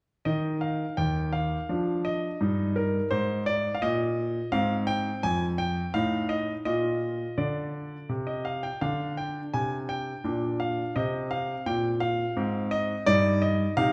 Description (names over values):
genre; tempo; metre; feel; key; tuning
classical-period piano sonatina; 84 BPM; 3/4; straight; Eb major; A4 = 442 Hz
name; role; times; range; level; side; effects
clear concert grand piano; solo; 0.3-13.9 s; Eb2 to Ab5; -28 LUFS; equal; none
room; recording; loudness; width
wet recital hall reverb, RT60 1.5 s; none; -28 LUFS; mono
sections
0.3-13.9 A section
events
none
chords
0.3 N.C.; 1.7 Dm/F; 2.4 Eb/G; 4.5 Fm/Ab; 5.9 F7/A; 6.7 Bb; 8.8 Fm69; 10.3 Gm/Bb; 11.0 Eb69; 12.4 Fm/Ab; 13.1 Eb/G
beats
| 0.26 0.98 1.69 | 2.41 3.12 3.82 | 4.52 5.23 5.94 | 6.66 7.38 8.10 | 8.82 9.54 10.25 | 10.96 11.67 12.37 | 13.07 13.78